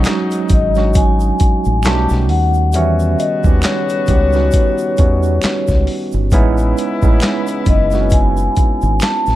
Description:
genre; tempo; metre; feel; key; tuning
R&B, neo-soul; 67 BPM; 4/4; swing 58% on 16ths; unclear; A4 = 442 Hz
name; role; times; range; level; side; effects
tine electric piano; accompaniment; 0.0-9.4 s; D#3 to G4; -19 LUFS; right 4 dB; medium stereo tremolo
warm horn section; stabs; 0.0-9.0 s; G#2 to G4; -27 LUFS; left 7 dB; none
deep dub fingered electric bass; bass; 0.0-9.4 s; F#1 to E2; -16 LUFS; equal; none
boom bap sampler-style drum kit; drums; 0.0-9.4 s; handclaps, hi-hat, kick drum, snare drum; -15 LUFS; equal; none
finger snaps and tube shaker; percussion; 0.0-9.4 s; none; -34 LUFS; right 6 dB; none
vibraphone with soft mallets; melody; 0.5-9.4 s; C#5 to A5; -19 LUFS; left 4 dB; none
room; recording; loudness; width
small room ambience; dark, warm production; -12 LUFS; side -14 dB against mid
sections
0.0-9.4 A section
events
none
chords
0.0 B69 (rootless); 1.8 B7b13; 2.7 Em6; 6.3 Amaj9

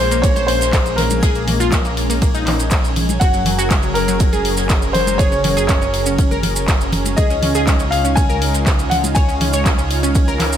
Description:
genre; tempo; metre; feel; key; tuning
progressive house; 121 BPM; 4/4; straight; unclear; A4 = 440 Hz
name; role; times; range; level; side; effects
clear concert grand piano; melody; 0.0-10.6 s; Bb4 to Ab5; -21 LUFS; left 2 dB; sidechain pumping, digital delay
lush unison pad; sustained chords; 0.0-10.6 s; Db3 to Bb4; -24 LUFS; right 1 dB; chorus, sidechain pumping
dark detuned saw bass; bass; 0.0-10.6 s; Bb1 to Db2; -21 LUFS; equal; sidechain pumping
twinkling granular texture; texture; 0.0-10.6 s; Ab5; -33 LUFS; right 1 dB; none
analog pluck; arpeggios; 0.1-10.6 s; Gb3 to Db5; -23 LUFS; equal; chorus, sidechain pumping, digital delay
deep house drum kit; drums; 0.1-10.6 s; handclaps, hi-hat, ride cymbal; -24 LUFS; left 1 dB; none
maracas; percussion; 0.1-10.6 s; none; -28 LUFS; right 4 dB; none
electronic kick drum; drums; 0.2-10.3 s; none; -16 LUFS; equal; none
jazz brush drum kit; drums; 0.2-10.5 s; hi-hat, snare drum; -31 LUFS; right 2 dB; none
congas; percussion; 0.4-10.5 s; none; -25 LUFS; equal; sidechain pumping on perc
room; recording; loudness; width
light reverb, studio reverb; none; -14 LUFS; side -10 dB against mid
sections
0.0-10.6 A section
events
none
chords
0.0 Bbm7; 3.2 Gbadd9; 7.2 Dbadd9

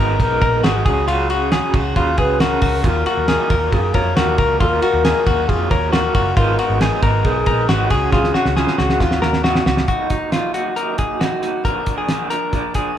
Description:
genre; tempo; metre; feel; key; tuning
jangly indie pop; 136 BPM; 4/4; straight; Eb minor; A4 = 440 Hz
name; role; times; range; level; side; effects
electric guitar through a small old amp; accompaniment; 0.0-13.0 s; Ab2 to Bb4; -23 LUFS; right 5 dB; tremolo
direct-recorded clean electric guitar; arpeggios; 0.0-13.0 s; Eb4 to Bb4; -21 LUFS; left 3 dB; none
vintage muted picked electric bass; bass; 0.0-9.8 s; Gb1 to Gb2; -22 LUFS; equal; none
mellow reedy alto flute; melody; 0.2-9.7 s; F4 to Db5; -22 LUFS; left 3 dB; none
cloth-damped thuddy drum kit; drums; 0.2-12.9 s; hi-hat, kick drum, ride cymbal, snare drum; -20 LUFS; equal; none
room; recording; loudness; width
moderate large studio reverb, RT60 1.3 s; band playing live in one room; -15 LUFS; side -10 dB against mid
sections
0.0-9.9 A section; 9.9-13.0 B section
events
drum fill 8.1-9.9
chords
0.0 Abmadd9; 0.9 Dbsus4; 2.8 Ebmadd9; 6.4 Abmadd9; 7.9 Dbsus4; 9.0 Ebmadd9; 9.9 Ebm; 11.7 Bb

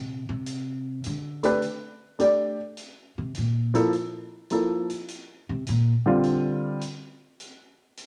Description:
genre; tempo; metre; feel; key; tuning
jazz piano trio; 104 BPM; 4/4; swing 68% on 8ths; C mixolydian; A4 = 441 Hz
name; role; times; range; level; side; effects
upright bass; bass; 0.0-5.9 s; Bb2 to D3; -30 LUFS; equal; none
hi-hat; drums; 0.5-8.1 s; none; -46 LUFS; equal; none
warm baby grand piano; melody; 1.4-6.8 s; D3 to D5; -25 LUFS; equal; none
room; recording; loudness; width
moderate large studio reverb, RT60 1.2 s; none; -26 LUFS; mono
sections
0.0-2.8 A section; 2.8-8.1 A section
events
upright bass solo 0.0-8.1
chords
0.5 Gsus2; 2.8 C7(no3); 7.4 N.C.

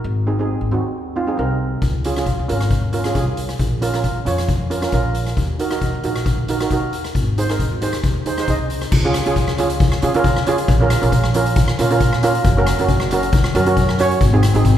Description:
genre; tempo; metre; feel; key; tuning
calypso; 135 BPM; 4/4; swing 53% on 16ths; Db major; A4 = 439 Hz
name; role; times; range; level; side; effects
upright bass; bass; 0.0-14.8 s; Gb1 to Db3; -21 LUFS; equal; none
steel pan; accompaniment; 0.3-14.7 s; C4 to Eb5; -20 LUFS; right 2 dB; none
street-band drum kit; drums; 1.8-14.8 s; crash cymbal, hi-hat, kick drum, rim click; -20 LUFS; left 2 dB; none
room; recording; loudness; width
moderate scoring stage reverb, RT60 1.9 s; recorded in a church or concert hall; -16 LUFS; side -11 dB against mid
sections
0.0-8.9 A section; 8.9-14.8 B section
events
none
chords
0.0 Ab7; 1.8 Db6; 3.6 Bbm; 5.4 Ebm; 7.2 Ab; 8.9 Db; 10.7 Bbm; 12.4 Gb; 14.2 Ab

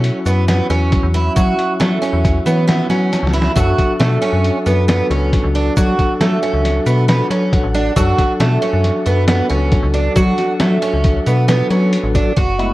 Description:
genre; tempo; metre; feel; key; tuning
progressive instrumental, band music in an uneven meter; 136 BPM; 5/4; straight; unclear; A4 = 440 Hz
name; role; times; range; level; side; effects
percussive tonewheel organ; accompaniment; 0.0-12.7 s; F#3 to B5; -21 LUFS; left 2 dB; fast rotary speaker
picked twelve-string acoustic guitar; arpeggios; 0.0-12.7 s; A3 to F#4; -19 LUFS; right 3 dB; ping-pong delay
metallic FM bass; bass; 0.0-12.7 s; F#1 to F#3; -16 LUFS; equal; none
lo-fi sampler-style drum kit; drums; 0.0-12.7 s; hi-hat, kick drum, snare drum; -18 LUFS; equal; overdrive
tube shaker; percussion; 0.3-12.3 s; none; -38 LUFS; left 4 dB; none
room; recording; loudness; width
light reverb; worn, warbling old tape, cassette tape, warbly pitch drift; -13 LUFS; side -17 dB against mid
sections
0.0-12.4 A section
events
tonewheel organ fill 2.2-3.6, 7.3-8.0; drum fill 3.1-3.6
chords
0.0 F#m7; 3.6 D

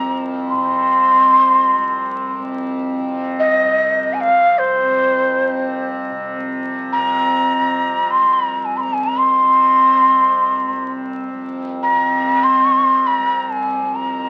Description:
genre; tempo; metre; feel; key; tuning
indian classical, Hindustani; free time; none; none; C raga malkauns; A4 = 441 Hz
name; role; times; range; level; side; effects
breathy bright bansuri; melody; 0.0-14.3 s; C5 to C6; -16 LUFS; equal; none
tanpura; drone; 0.0-14.3 s; C2 to C3; -26 LUFS; equal; none
room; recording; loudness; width
moderate studio reverb, RT60 0.9 s; very old 78 rpm record, vinyl crackle; -17 LUFS; mono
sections
0.0-6.4 A section; 6.4-14.3 A section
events
none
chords
none

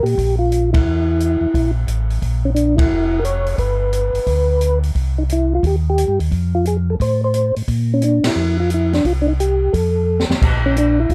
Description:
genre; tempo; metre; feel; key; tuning
soul jazz organ trio; 176 BPM; 4/4; swing 65% on 8ths; unclear; A4 = 440 Hz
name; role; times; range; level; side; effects
percussive tonewheel organ; melody; 0.0-11.1 s; Db4 to Db5; -20 LUFS; equal; slow rotary speaker, chorus vibrato
mellow tonewheel organ; bass; 0.0-11.1 s; F1 to Bb2; -20 LUFS; equal; slow rotary speaker
open jazz drum kit; drums; 0.1-11.1 s; crash cymbal, hi-hat, kick drum, ride cymbal, snare drum; -24 LUFS; equal; none
room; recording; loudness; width
little or no reverb; dark, warm production; -17 LUFS; mono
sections
0.0-10.4 A section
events
band accent 0.7, 2.7, 8.2; drum fill 10.1-10.4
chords
0.0 Eb (rootless); 0.8 A5; 2.2 Bb5; 3.6 G; 4.9 Cm; 6.3 F; 7.7 Bb5; 9.0 C5; 9.7 F; 10.4 Bb5

